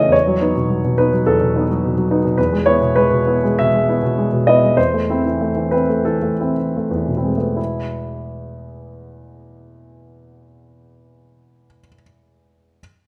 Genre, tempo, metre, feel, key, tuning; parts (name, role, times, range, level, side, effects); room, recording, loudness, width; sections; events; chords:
classical, romantic character piece for solo piano; 70-109 BPM; 4/4; rubato; E major; A4 = 439 Hz
warm baby grand piano; solo; 0.0-12.8 s; E2 to E5; -18 LUFS; equal
moderate stone room reverb, RT60 1.1 s; -17 LUFS; mono
0.0-7.6 A section; 7.6-10.6 B section
slowing down 1.3-7.6
0.1 B7/E; 2.4 E; 4.8 Am/E; 7.6 E